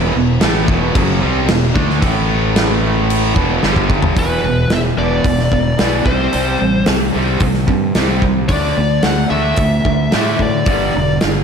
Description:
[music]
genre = hard rock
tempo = 111 BPM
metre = 4/4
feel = straight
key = E minor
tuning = A4 = 438 Hz
[part]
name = overdriven electric guitar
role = riff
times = 0.0-11.4 s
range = E2 to D4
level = -19 LUFS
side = right 8 dB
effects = none
[part]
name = sludgy distorted guitar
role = riff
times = 0.0-11.4 s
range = E2 to D4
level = -20 LUFS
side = left 10 dB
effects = overdrive, slapback echo
[part]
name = fuzz fingered electric bass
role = bass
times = 0.0-11.4 s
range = E1 to A2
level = -20 LUFS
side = equal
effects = overdrive
[part]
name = big rock drum kit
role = drums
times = 0.4-11.3 s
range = crash cymbal, hi-hat, kick drum, snare drum, toms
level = -18 LUFS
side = equal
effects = none
[part]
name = biting lead guitar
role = melody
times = 4.2-11.2 s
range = B4 to F#5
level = -20 LUFS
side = left 3 dB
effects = overdrive, slapback echo
[sound]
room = moderate lush hall reverb, RT60 2.0 s, small room ambience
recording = big arena sound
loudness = -12 LUFS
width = side -6 dB against mid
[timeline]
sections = 0.0-4.2 A section; 4.2-11.4 B section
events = drum fill 3.6-4.2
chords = 0.0 Em; 2.0 A5; 3.4 E5; 3.6 G5; 4.2 E5; 6.1 C5; 8.5 D5; 10.7 G5

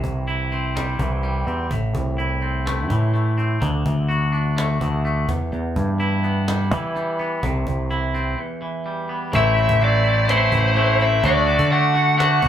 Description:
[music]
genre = quiet-loud alternative rock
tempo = 126 BPM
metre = 4/4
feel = straight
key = A dorian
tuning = A4 = 439 Hz
[part]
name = twangy electric guitar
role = arpeggios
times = 0.0-12.5 s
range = E2 to F#4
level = -23 LUFS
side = left 1 dB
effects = none
[part]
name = growling picked electric bass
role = bass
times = 0.0-12.5 s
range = A1 to E3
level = -21 LUFS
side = equal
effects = overdrive
[part]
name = cajon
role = drums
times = 0.0-12.5 s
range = none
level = -29 LUFS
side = equal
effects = none
[part]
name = lead guitar through a small cranked amp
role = melody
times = 9.4-12.5 s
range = C5 to F#5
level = -20 LUFS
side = equal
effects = overdrive
[sound]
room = moderate studio reverb, RT60 0.8 s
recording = band playing live in one room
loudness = -18 LUFS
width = side -10 dB against mid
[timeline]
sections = 0.0-9.3 A section; 9.3-12.5 B section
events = break 8.4-9.3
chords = 0.0 C; 1.7 Am; 3.6 D; 5.3 Em; 7.4 C; 8.4 Em; 9.3 Am; 11.2 D

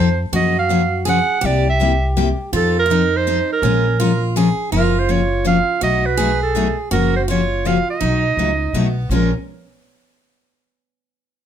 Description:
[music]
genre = acoustic string swing (jazz manouche)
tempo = 164 BPM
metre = 3/4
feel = swing 63% on 8ths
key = Bb minor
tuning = A4 = 440 Hz
[part]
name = breathy clarinet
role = melody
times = 0.0-9.3 s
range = A4 to Gb5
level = -19 LUFS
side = right 5 dB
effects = none
[part]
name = picked steel-string acoustic guitar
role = second line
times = 0.0-9.3 s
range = B3 to A4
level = -23 LUFS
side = right 4 dB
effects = none
[part]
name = picked steel-string acoustic guitar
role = accompaniment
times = 0.0-9.3 s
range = Bb2 to Bb4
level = -20 LUFS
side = left 5 dB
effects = none
[part]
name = upright bass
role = bass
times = 0.0-9.3 s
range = Gb1 to Gb2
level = -20 LUFS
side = equal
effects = none
[sound]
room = light reverb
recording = close, detailed microphones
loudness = -15 LUFS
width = side -9 dB against mid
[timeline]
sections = 0.0-4.7 A section; 4.7-9.1 B section; 9.1-10.2 C section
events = none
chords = 0.3 Gbmaj7; 1.4 C7; 2.5 F7; 3.6 Bbm7; 4.7 Gbmaj7; 5.8 B7; 6.9 Gbmaj7; 8.0 B7; 9.1 Bbm7

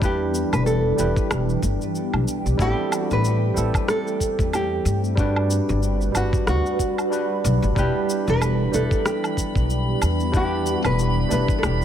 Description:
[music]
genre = sunset chillout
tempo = 93 BPM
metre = 4/4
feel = swing 57% on 16ths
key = E minor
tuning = A4 = 440 Hz
[part]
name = nylon-string guitar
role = melody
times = 0.0-11.8 s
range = D4 to B4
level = -26 LUFS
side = equal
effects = ping-pong delay
[part]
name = barky tine electric piano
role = accompaniment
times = 0.0-11.8 s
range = G3 to B4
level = -27 LUFS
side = equal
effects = auto-pan, digital delay
[part]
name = shimmering ambient pad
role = sustained chords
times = 0.0-11.8 s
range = E3 to B4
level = -28 LUFS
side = right 1 dB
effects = chorus, built-in reverb, phaser
[part]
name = upright bass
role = bass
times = 0.0-11.8 s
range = E1 to G2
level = -23 LUFS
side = equal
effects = none
[part]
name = electronic kick drum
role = drums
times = 0.0-11.6 s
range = none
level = -23 LUFS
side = equal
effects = none
[part]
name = electronic shaker, woodblock and rim click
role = drums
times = 0.0-11.8 s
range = none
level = -29 LUFS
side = right 1 dB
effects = none
[part]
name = drifting glass-harmonics texture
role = texture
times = 8.5-11.8 s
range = B5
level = -32 LUFS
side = right 1 dB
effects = chorus, built-in reverb
[sound]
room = light reverb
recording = none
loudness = -19 LUFS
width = side -10 dB against mid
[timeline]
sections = 0.0-11.8 A section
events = none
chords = 0.0 Em7; 2.6 Am7; 5.2 Gmaj7; 7.8 Em7

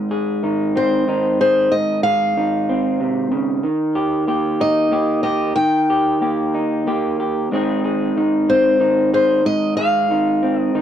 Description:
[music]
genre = acoustic folk-pop ballad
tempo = 93 BPM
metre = 3/4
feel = straight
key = Ab major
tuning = A4 = 439 Hz
[part]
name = electric guitar through a small old amp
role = accompaniment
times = 0.0-10.8 s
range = Ab2 to Ab4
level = -18 LUFS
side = right 1 dB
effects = none
[part]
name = picked steel-string acoustic guitar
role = melody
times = 0.8-10.8 s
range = C5 to G5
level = -18 LUFS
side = left 1 dB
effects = none
[sound]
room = light reverb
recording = dry, close 1970s-style studio recording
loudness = -15 LUFS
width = side -9 dB against mid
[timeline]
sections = 0.0-7.5 A section; 7.5-10.8 A section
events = none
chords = 0.0 Ab; 3.6 Eb; 7.5 Ab

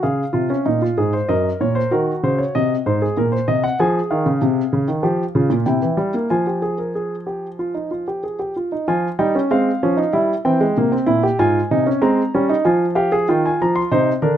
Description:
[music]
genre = classical, baroque-style 3-part fugue for grand piano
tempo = 95 BPM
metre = 4/4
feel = straight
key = F minor from 3.8 s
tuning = A4 = 440 Hz
[part]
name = warm grand piano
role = solo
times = 0.0-14.4 s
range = Gb2 to C6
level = -16 LUFS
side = equal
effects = none
[sound]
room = little or no reverb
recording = close, detailed microphones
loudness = -16 LUFS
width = side -10 dB against mid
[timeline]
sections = 0.0-8.9 A section; 8.9-14.4 B section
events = none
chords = 0.0 Dbmaj7; 1.3 Gb; 2.5 Cm7b5; 3.8 Fm; 5.0 Gm7b5/F; 5.7 C7; 6.3 Fm; 10.1 C7; 11.4 Fm/Ab; 12.6 Fm

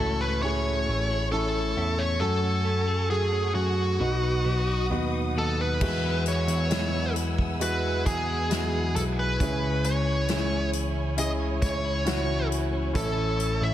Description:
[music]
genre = pop ballad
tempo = 67 BPM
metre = 4/4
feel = straight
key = E major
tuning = A4 = 440 Hz
[part]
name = bluesy overdriven lead guitar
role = melody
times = 0.0-13.7 s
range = F#4 to E5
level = -29 LUFS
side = equal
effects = distortion
[part]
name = warm concert grand piano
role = accompaniment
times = 0.0-13.7 s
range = A2 to A4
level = -32 LUFS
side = equal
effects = slapback echo
[part]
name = warm studio string section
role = sustained chords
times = 0.0-13.7 s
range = A3 to E6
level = -37 LUFS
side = right 1 dB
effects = none
[part]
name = clean electric guitar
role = arpeggios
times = 0.0-13.7 s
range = E2 to G#4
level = -35 LUFS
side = left 6 dB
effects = none
[part]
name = bell-like tine electric piano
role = bass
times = 0.0-13.7 s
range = A1 to F#2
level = -28 LUFS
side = equal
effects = phaser
[part]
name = natural country drum kit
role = drums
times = 5.8-13.6 s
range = crash cymbal, hi-hat, kick drum, snare drum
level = -31 LUFS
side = equal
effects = none
[sound]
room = light reverb, studio ambience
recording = none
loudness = -24 LUFS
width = side -12 dB against mid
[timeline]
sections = 0.0-5.8 A section; 5.8-13.7 B section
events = none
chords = 0.0 A; 2.2 F#madd9; 4.0 B; 5.8 Eadd9; 9.4 C#m; 13.0 A

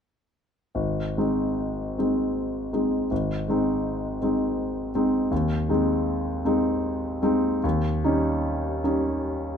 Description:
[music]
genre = classical, romantic nocturne for solo piano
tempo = 66-83 BPM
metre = 3/4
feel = rubato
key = Ab major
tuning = A4 = 439 Hz
[part]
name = warm concert grand piano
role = solo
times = 0.7-9.6 s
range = Ab1 to Eb4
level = -23 LUFS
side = equal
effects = none
[sound]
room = light reverb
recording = close, detailed microphones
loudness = -23 LUFS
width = side -7 dB against mid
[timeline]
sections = 0.8-9.6 A section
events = none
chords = 0.8 Ab; 5.3 Ab/Eb; 7.6 Eb7

